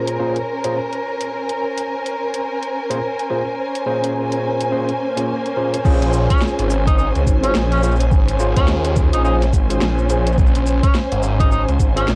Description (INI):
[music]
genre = glitch hop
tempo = 106 BPM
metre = 4/4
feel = swing 60% on 16ths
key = Bb minor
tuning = A4 = 440 Hz
[part]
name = overdriven tine electric piano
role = stabs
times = 0.0-12.0 s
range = Bb2 to C5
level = -26 LUFS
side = equal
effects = sidechain pumping, low-pass filter, tape echo
[part]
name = dark studio string section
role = texture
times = 0.0-12.2 s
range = Db4 to Ab5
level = -25 LUFS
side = equal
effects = sidechain pumping
[part]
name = drum and bass drum kit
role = drums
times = 0.1-12.2 s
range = crash cymbal, hi-hat, rim click, shaker, snare drum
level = -28 LUFS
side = equal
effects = overdrive, cassette tape
[part]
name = swell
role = sound effects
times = 5.0-5.9 s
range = none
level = -31 LUFS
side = equal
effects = none
[part]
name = electronic kick drum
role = drums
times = 5.8-11.9 s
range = none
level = -19 LUFS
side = equal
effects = overdrive, cassette tape
[part]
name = phased detuned saw bass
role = bass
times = 5.9-12.2 s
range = Ab1 to Eb2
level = -20 LUFS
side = equal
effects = phaser
[part]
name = breathy tenor saxophone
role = melody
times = 6.3-12.1 s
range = Db4 to Eb4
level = -26 LUFS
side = equal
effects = cassette tape, tape echo
[sound]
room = little or no reverb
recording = home recording on cassette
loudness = -18 LUFS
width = mono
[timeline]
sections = 0.0-5.9 A section; 5.9-12.2 B section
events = swell 5.0-5.9; drop 5.9-12.2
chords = 0.0 Bbm9